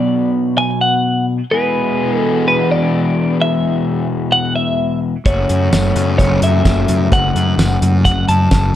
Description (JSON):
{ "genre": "indie rock", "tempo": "128 BPM", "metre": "4/4", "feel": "straight", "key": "unclear", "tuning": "A4 = 440 Hz", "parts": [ { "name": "twelve-string electric guitar", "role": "melody", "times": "0.0-8.8 s", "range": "B4 to A5", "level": "-18 LUFS", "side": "equal", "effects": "none" }, { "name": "overdriven electric guitar", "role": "riff", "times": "0.0-8.8 s", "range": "E2 to G#4", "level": "-19 LUFS", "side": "left 7 dB", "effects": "none" }, { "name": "overdriven semi-hollow guitar", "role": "riff", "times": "0.0-8.8 s", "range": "F#2 to E4", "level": "-20 LUFS", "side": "right 6 dB", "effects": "wide subtle chorus" }, { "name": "fuzz fingered electric bass", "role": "bass", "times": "5.3-8.8 s", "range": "F#1 to F#2", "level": "-16 LUFS", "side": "equal", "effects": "overdrive" }, { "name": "cloth-damped thuddy drum kit", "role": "drums", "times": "5.3-8.6 s", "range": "hi-hat, kick drum, snare drum, tambourine", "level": "-16 LUFS", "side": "equal", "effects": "none" } ], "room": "small room ambience", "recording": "dark, warm production", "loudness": "-13 LUFS", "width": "side -12 dB against mid", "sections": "0.0-8.8 A section", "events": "none", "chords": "0.0 Bm; 1.5 E; 5.3 F#m" }